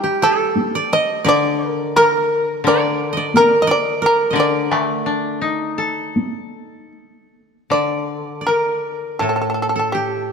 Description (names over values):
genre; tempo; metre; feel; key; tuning
japanese traditional, Japanese chamber music; 73-89 BPM; 4/4; rubato; D miyako bushi; A4 = 440 Hz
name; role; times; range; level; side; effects
shamisen; melody; 0.0-10.3 s; G4 to Eb5; -19 LUFS; equal; none
koto; second line; 0.0-10.3 s; G4 to Eb5; -19 LUFS; right 1 dB; none
koto; accompaniment; 0.0-10.3 s; A2 to A4; -23 LUFS; left 4 dB; none
taiko ensemble; percussion; 0.6-6.3 s; none; -22 LUFS; equal; none
room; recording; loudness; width
wet plate reverb, RT60 2.4 s; heard from further back in the room; -16 LUFS; side -6 dB against mid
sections
0.0-7.7 A section; 7.7-10.3 B section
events
none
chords
none